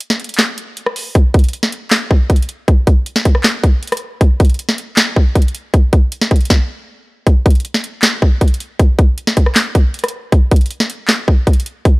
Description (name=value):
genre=hip hop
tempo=157 BPM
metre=4/4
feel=half-time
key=none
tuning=none
part: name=trap drum kit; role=drums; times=0.0-11.9 s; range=handclaps, hi-hat, kick drum, rim click, snare drum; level=-11 LUFS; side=equal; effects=none
room=digital ambience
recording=dry, gritty hardware recording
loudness=-12 LUFS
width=side -24 dB against mid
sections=0.0-7.3 A section; 7.3-12.0 B section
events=break 0.0-1.2; stop 6.5-7.3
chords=none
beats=0.01 0.39 0.77 | 1.15 1.53 1.92 2.30 | 2.68 3.06 3.44 3.83 | 4.21 4.59 4.97 5.36 | 5.74 6.12 6.50 6.88 | 7.27 7.65 8.03 8.41 | 8.79 9.18 9.56 9.94 | 10.32 10.71 11.09 11.47 | 11.85